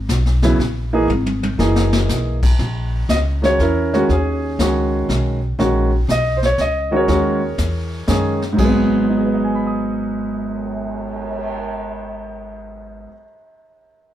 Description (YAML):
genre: jazz piano trio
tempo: 120 BPM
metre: 3/4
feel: swing 68% on 8ths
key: G# minor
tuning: A4 = 441 Hz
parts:
  - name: upright bass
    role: bass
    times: 0.0-13.0 s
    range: F#1 to F#2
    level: -21 LUFS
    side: equal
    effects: none
  - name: jazz brush drum kit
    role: drums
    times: 0.1-11.5 s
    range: brushed snare drum, crash cymbal, cymbal swell, hi-hat, kick drum, snare drum, toms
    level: -23 LUFS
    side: left 1 dB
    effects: none
  - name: warm baby grand piano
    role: melody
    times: 0.4-13.3 s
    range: G#2 to D#6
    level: -18 LUFS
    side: right 1 dB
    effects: none
room: moderate studio reverb, RT60 0.8 s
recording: heard from further back in the room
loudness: -16 LUFS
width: side -12 dB against mid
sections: 0.0-2.6 A section; 2.6-8.6 B section; 8.6-11.6 C section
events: drum fill 1.1-2.1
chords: 0.0 G#m9; 2.6 A#dim; 4.1 D#7sus4; 5.6 Bmaj13/A#; 7.1 D#7sus4; 8.6 G#m7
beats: 0.09 0.59 | 1.09 1.59 2.09 | 2.59 3.09 3.59 | 4.09 4.59 5.09 | 5.59 6.09 6.59 | 7.09 7.59 8.09 | 8.59 9.09 9.59 | 10.09 10.59 11.09